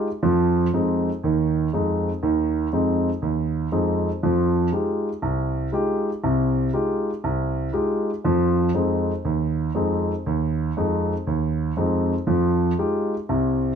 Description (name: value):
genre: jazz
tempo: 120 BPM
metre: 4/4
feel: swing 67% on 8ths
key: unclear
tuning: A4 = 441 Hz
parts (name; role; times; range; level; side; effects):
- warm concert grand piano; solo; 0.0-13.7 s; C2 to G4; -20 LUFS; right 1 dB; none
room: moderate large studio reverb, RT60 0.9 s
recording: close, detailed microphones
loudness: -20 LUFS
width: side -7 dB against mid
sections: 0.0-13.8 A section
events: none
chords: 0.2 Ab; 4.2 Fm9; 8.2 Ab; 12.3 Fm9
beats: | 0.22 0.72 1.22 1.72 | 2.23 2.73 3.23 3.73 | 4.23 4.74 5.24 5.74 | 6.24 6.74 7.24 7.75 | 8.25 8.75 9.25 9.75 | 10.26 10.76 11.26 11.76 | 12.27 12.77 13.27